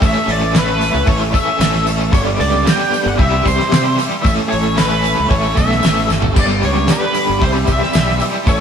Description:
psychedelic rock; 114 BPM; 4/4; straight; A mixolydian; A4 = 440 Hz
mellow tonewheel organ; sustained chords; 0.0-8.6 s; G4 to E6; -26 LUFS; right 2 dB; chorus vibrato
crunchy overdriven guitar; riff; 0.0-8.6 s; G2 to A4; -18 LUFS; left 1 dB; tremolo
fuzz fingered electric bass; bass; 0.0-8.6 s; G1 to C3; -19 LUFS; equal; overdrive
damped 70s drum kit; drums; 0.0-8.6 s; crash cymbal, hi-hat, kick drum, snare drum, toms; -18 LUFS; equal
tambourine; percussion; 0.0-8.6 s; -33 LUFS; right 5 dB
octave-fuzz lead guitar; melody; 0.1-8.6 s; B4 to G5; -19 LUFS; equal; wah, distortion
moderate stone room reverb, RT60 1.1 s; band playing live in one room; -12 LUFS; side -7 dB against mid
0.0-8.6 A section
drum fill 6.1
0.0 A; 2.1 G; 3.2 C; 4.3 A; 6.4 G; 7.4 C
| 0.03 0.55 1.08 1.61 | 2.14 2.67 3.20 3.73 | 4.25 4.78 5.31 5.84 | 6.37 6.90 7.43 7.95 | 8.48

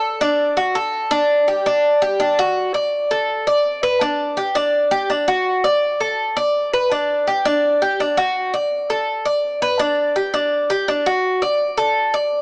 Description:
latin; 166 BPM; 4/4; straight; G major; A4 = 440 Hz
Cuban tres; solo; 0.0-12.4 s; D4 to D5; -19 LUFS; equal
light reverb; small speaker sound; -19 LUFS; mono
0.0-1.1 A section; 1.1-12.4 B section
0.04 0.40 0.76 | 1.12 1.49 1.85 2.21 | 2.57 2.93 3.30 3.66 | 4.02 4.38 4.74 5.11 | 5.47 5.83 6.19 6.55 | 6.91 7.27 7.63 8.00 | 8.36 8.72 9.08 9.44 | 9.80 10.16 10.52 10.88 | 11.24 11.61 11.97 12.33

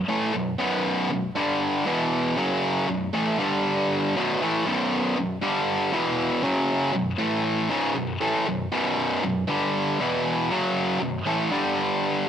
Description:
rock; 118 BPM; 4/4; straight; B minor; A4 = 439 Hz
high-gain distorted guitar; solo; 0.0-12.3 s; B1 to A3; -22 LUFS; equal; distortion, cassette tape
light reverb, digital ambience; home recording on cassette; -22 LUFS; side -9 dB against mid
0.0-12.3 A section
0.0 B5; 1.4 G5; 1.9 E5; 2.4 F#5; 2.9 B5; 3.4 G5; 4.2 B5; 5.4 G5; 5.9 E5; 6.4 F#5; 6.9 B5; 7.2 A5; 7.7 B5; 9.5 G5; 10.0 E5; 10.5 F#5; 11.0 B5; 11.5 G5
0.09 | 0.60 1.10 1.61 2.12 | 2.63 3.14 3.65 4.15 | 4.66 5.17 5.68 6.18 | 6.69 7.20 7.71 8.22 | 8.72 9.23 9.74 10.25 | 10.76 11.26 11.77

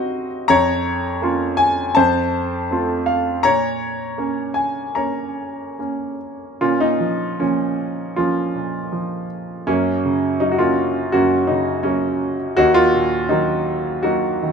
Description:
classical, lyrical solo piano; 71-85 BPM; 4/4; rubato; Bb minor; A4 = 442 Hz
clear concert grand piano; solo; 0.0-14.5 s; Eb2 to Bb5; -17 LUFS; equal
moderate studio reverb, RT60 0.6 s; minimal, uncompressed stereo recording; -17 LUFS; side -6 dB against mid
0.0-6.6 A section; 6.6-14.5 B section
0.5 Bbm/F; 2.0 F; 3.4 Bbm; 9.7 Gb; 12.6 Ebm
| 0.49 1.22 1.96 2.70 | 3.44 4.18 4.97 5.80 | 6.61 7.40 8.17 8.92 | 9.68 10.41 11.13 11.85 | 12.57 13.29 14.04

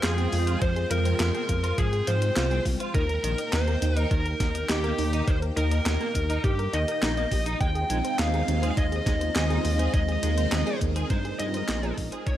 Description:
synthwave; 103 BPM; 4/4; straight; A4 = 437 Hz
high-gain lead guitar; melody; 0.0-12.4 s; G4 to G5; -31 LUFS; equal; distortion, tape echo
soft synth bell; second line; 0.0-12.4 s; G4 to G5; -37 LUFS; left 2 dB
string machine, full ensemble; sustained chords; 0.0-12.4 s; Ab3 to G5; -33 LUFS; equal; phaser, ensemble chorus, sidechain pumping
soft round pluck; arpeggios; 0.0-12.3 s; Eb4 to Eb5; -35 LUFS; right 3 dB; chorus, cassette tape, digital delay
electric guitar at the edge of break-up; riff; 0.0-12.3 s; Db3 to Ab4; -37 LUFS; right 3 dB; ensemble chorus, digital delay
dark detuned saw bass; bass; 0.0-12.4 s; Bb1 to Ab2; -27 LUFS; equal; sidechain pumping
clean 12-bit digital drum machine; drums; 0.0-12.4 s; handclaps, hi-hat, snare drum; -31 LUFS; equal; gated reverb
electronic kick drum; drums; 0.6-12.4 s; -27 LUFS; equal
light reverb; -23 LUFS; side -12 dB against mid
0.0-12.4 A section
fade-out 10.7-12.4
0.0 Fmadd9; 2.9 Eb; 7.6 Ab6
0.03 | 0.62 1.20 1.78 2.36 | 2.95 3.53 4.11 4.69 | 5.28 5.86 6.44 7.02 | 7.61 8.19 8.77 9.35 | 9.94 10.52 11.10 11.68 | 12.27

